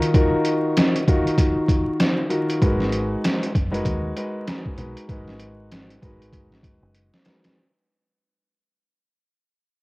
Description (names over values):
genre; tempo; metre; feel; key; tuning
hip hop, boom-bap hip-hop; 97 BPM; 4/4; swing 61% on 16ths; unclear; A4 = 441 Hz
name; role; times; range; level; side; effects
dark baby grand piano; accompaniment; 0.0-7.5 s; Eb3 to Cb5; -23 LUFS; left 1 dB; cassette tape
trip hop sampler-style drum kit; drums; 0.0-7.6 s; hi-hat, kick drum, snare drum; -21 LUFS; equal; overdrive, vintage 12-bit sampler grit, cassette tape
deep dub fingered electric bass; bass; 2.6-7.1 s; Gb1 to Eb2; -28 LUFS; equal; none
room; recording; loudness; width
light reverb, digital ambience; home recording on cassette, vinyl crackle; -19 LUFS; side -23 dB against mid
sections
0.0-7.6 A section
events
fade-out 0.0-7.6; drum fill 6.9-7.6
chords
0.0 Ebmadd9; 2.6 Abm7